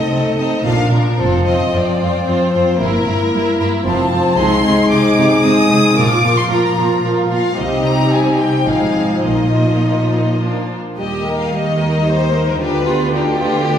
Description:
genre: quick classical-period movement for symphony orchestra.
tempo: 112 BPM.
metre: 3/4.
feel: rubato.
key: Eb major from 4.4 s.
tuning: A4 = 444 Hz.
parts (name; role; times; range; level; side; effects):
rich chamber violin section; melody; 0.0-13.8 s; G4 to Eb6; -20 LUFS; left 2 dB; none.
warm chamber violin section; second line; 0.0-13.8 s; D4 to C5; -21 LUFS; left 2 dB; none.
warm chamber viola section; accompaniment; 0.0-13.8 s; F3 to Bb4; -20 LUFS; right 1 dB; none.
warm French horn section; sustained chords; 0.0-10.7 s; F3 to F4; -19 LUFS; left 2 dB; none.
warm chamber cello section; bass; 0.1-13.8 s; F2 to Eb3; -20 LUFS; right 2 dB; none.
dark chamber double bass section; bass; 0.7-13.8 s; F1 to Eb2; -22 LUFS; right 2 dB; none.
room: wet recital hall reverb, RT60 1.7 s.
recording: recorded in a church or concert hall.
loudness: -13 LUFS.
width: side -9 dB against mid.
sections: 0.0-11.0 A section; 11.0-13.8 B section.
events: none.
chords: 0.0 Adim/C; 0.7 Bb; 1.2 F5; 2.8 Edim/G; 3.9 F; 4.4 Ab/C; 6.0 Bb5; 7.6 Cm; 8.7 Fm7/Ab; 9.2 Bbsus4; 10.4 Bb; 11.0 Eb; 12.6 G7/D.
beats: 0.11 0.65 | 1.20 1.74 2.28 | 2.81 3.33 3.86 | 4.39 4.91 5.44 | 5.97 6.50 7.04 | 7.57 8.12 8.67 | 9.25 9.83 10.41 | 10.98 11.53 12.07 | 12.61 13.13 13.66.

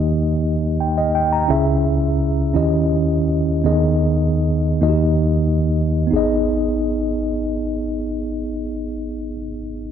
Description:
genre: gospel.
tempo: 44-58 BPM (dotted quarters).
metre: 6/8.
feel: straight.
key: G# harmonic minor.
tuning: A4 = 440 Hz.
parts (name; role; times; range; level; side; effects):
mellow tine electric piano; solo; 0.0-9.9 s; G#1 to A#5; -17 LUFS; equal; medium stereo tremolo.
room: moderate concert hall reverb, RT60 1.9 s.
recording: dark, warm production.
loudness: -17 LUFS.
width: side -8 dB against mid.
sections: 0.0-6.1 A section; 6.1-9.9 B section.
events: slowing down 1.5-6.1.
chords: 0.0 D#; 1.5 C#m; 2.6 D#7b9; 3.6 G#m/D#; 4.8 D#; 6.1 G#m.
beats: 0.47 | 1.50 2.55 | 3.65 4.82 | 6.12 7.49 | 8.86.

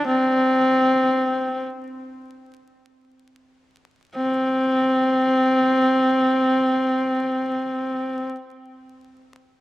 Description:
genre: mongolian traditional.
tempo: free time.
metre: none.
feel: none.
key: unclear.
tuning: A4 = 440 Hz.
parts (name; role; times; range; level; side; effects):
clear horsehead fiddle; solo; 0.0-8.3 s; C4; -18 LUFS; equal; none.
room: light reverb.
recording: vinyl crackle.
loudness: -18 LUFS.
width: side -17 dB against mid.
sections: 0.0-4.2 A section; 4.2-7.5 B section.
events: slowing down 0.0-4.2.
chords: none.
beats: free time.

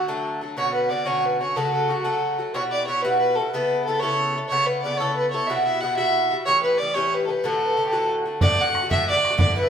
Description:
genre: celtic folk, Celtic jig.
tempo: 122 BPM (dotted quarters).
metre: 6/8.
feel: straight.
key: D major.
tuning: A4 = 441 Hz.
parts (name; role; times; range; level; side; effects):
warm fiddle; melody; 0.0-9.7 s; F#4 to F#5; -22 LUFS; equal; none.
Irish bouzouki; accompaniment; 0.0-9.7 s; A2 to A4; -25 LUFS; equal; none.
bodhran; percussion; 8.4-9.6 s; none; -22 LUFS; equal; none.
room: wet stone room reverb, RT60 0.9 s.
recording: band playing live in one room.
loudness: -20 LUFS.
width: side -8 dB against mid.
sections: 0.6-8.4 A section; 8.4-9.7 B section.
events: none.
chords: 0.0 D; 0.6 Bmadd9; 1.6 F#m; 2.5 Emadd9; 3.5 Aadd9; 5.5 Emadd9; 6.5 A7; 7.4 D.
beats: 0.09 | 0.58 1.07 | 1.56 2.06 | 2.55 3.04 | 3.53 4.03 | 4.52 5.01 | 5.50 5.99 | 6.47 6.96 | 7.45 7.94 | 8.42 8.91 | 9.39.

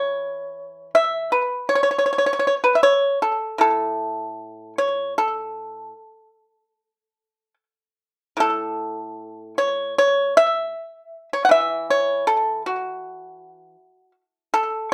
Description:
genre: chinese traditional, Chinese solo plucked strings.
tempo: 70-81 BPM.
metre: 4/4.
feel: rubato.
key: A gong mode.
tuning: A4 = 440 Hz.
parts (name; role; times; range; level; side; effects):
pipa; solo; 0.0-14.9 s; A2 to F#5; -21 LUFS; equal; slapback echo.
room: moderate studio reverb, RT60 0.6 s.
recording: dark, warm production.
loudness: -21 LUFS.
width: mono.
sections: 0.0-8.4 A section; 8.4-14.9 B section.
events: none.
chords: none.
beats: 0.57 1.31 | 2.06 2.82 3.59 4.37 | 5.14 5.93 6.73 7.56 | 8.38 9.17 9.96 10.74 | 11.50 12.26 13.01 13.76 | 14.52.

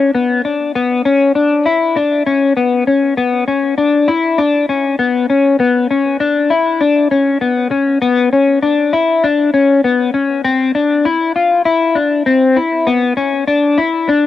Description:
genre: dream pop.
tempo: 99 BPM.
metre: 4/4.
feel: straight.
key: unclear.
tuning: A4 = 439 Hz.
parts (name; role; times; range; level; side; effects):
clean electric guitar; solo; 0.0-14.3 s; B3 to F4; -11 LUFS; left 3 dB; analog chorus, cassette tape.
room: moderate booth ambience, RT60 0.2 s.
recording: home recording on cassette.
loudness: -11 LUFS.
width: side -12 dB against mid.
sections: 0.0-14.3 A section.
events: none.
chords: none.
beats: 0.15 | 0.75 1.36 1.97 2.57 | 3.18 3.78 4.39 5.00 | 5.60 6.21 6.81 7.42 | 8.03 8.63 9.24 9.84 | 10.45 11.06 11.66 12.27 | 12.87 13.48 14.09.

